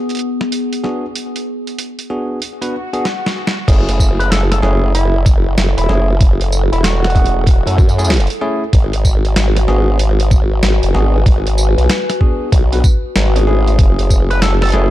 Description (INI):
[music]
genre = glitch hop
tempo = 95 BPM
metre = 4/4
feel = swing 64% on 16ths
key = F# minor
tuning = A4 = 440 Hz
[part]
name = warbly tape-like pad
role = texture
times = 0.0-14.9 s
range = B3 to A5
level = -23 LUFS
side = left 3 dB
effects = chorus, built-in reverb, sidechain pumping
[part]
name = boom bap sampler-style drum kit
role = drums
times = 0.1-14.9 s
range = crash cymbal, hi-hat, snare drum, tambourine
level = -20 LUFS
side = right 1 dB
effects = none
[part]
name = bell-like tine electric piano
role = stabs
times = 0.8-14.9 s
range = A3 to B4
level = -22 LUFS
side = equal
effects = vintage 12-bit sampler grit, sidechain pumping, ping-pong delay
[part]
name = swell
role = sound effects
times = 2.6-3.7 s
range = none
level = -26 LUFS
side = left 2 dB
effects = none
[part]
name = formant-sweep wobble bass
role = bass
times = 3.7-14.9 s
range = E1 to F#2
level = -14 LUFS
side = equal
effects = chorus, overdrive
[part]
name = electronic kick drum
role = drums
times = 3.7-14.3 s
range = none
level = -12 LUFS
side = equal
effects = none
[part]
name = sync lead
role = melody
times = 4.2-7.7, 14.3-14.7 s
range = E4 to B4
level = -21 LUFS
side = equal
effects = chorus, ping-pong delay
[sound]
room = digital ambience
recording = dark, warm production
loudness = -12 LUFS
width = side -14 dB against mid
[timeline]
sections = 0.0-3.7 A section; 3.7-14.9 B section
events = swell 2.6-3.7; drum fill 3.0-3.7; drop 3.7-14.9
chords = 0.0 G#m7b5; 3.7 F#m7; 8.7 G#m7b5; 13.8 F#m7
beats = 0.52 | 1.16 1.79 2.42 3.05 | 3.68 4.31 4.95 5.58 | 6.21 6.84 7.47 8.10 | 8.73 9.37 10.00 10.63 | 11.26 11.89 12.52 13.15 | 13.79 14.42